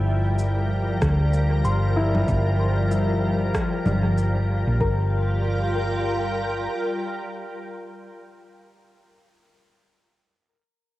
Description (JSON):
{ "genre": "ambient dub", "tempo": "95 BPM", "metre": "4/4", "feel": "swing 59% on 16ths", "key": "G dorian", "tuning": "A4 = 438 Hz", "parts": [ { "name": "soft additive organ-like pad", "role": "sustained chords", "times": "0.0-8.1 s", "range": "F3 to G5", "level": "-26 LUFS", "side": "equal", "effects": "ensemble chorus, built-in reverb, cassette tape" }, { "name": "hollow-body short-scale fingered electric bass", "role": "bass", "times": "0.0-6.7 s", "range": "G1 to D2", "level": "-22 LUFS", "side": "equal", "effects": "none" }, { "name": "electronic cabasa, rim click and congas", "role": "drums", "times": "0.4-4.3 s", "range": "none", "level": "-30 LUFS", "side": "equal", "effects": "overdrive, cassette tape, dub echo" }, { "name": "electronic kick drum", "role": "drums", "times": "1.0-5.0 s", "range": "none", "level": "-28 LUFS", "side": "equal", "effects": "overdrive, cassette tape" }, { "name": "concert harp", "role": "arpeggios", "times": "1.6-8.7 s", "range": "E4 to C6", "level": "-31 LUFS", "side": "left 2 dB", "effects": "low-pass filter, cassette tape, analog delay" } ], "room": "light reverb", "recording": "home recording on cassette", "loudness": "-20 LUFS", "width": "side -16 dB against mid", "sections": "0.0-4.8 A section; 4.8-7.3 B section", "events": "none", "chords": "0.0 Gm7" }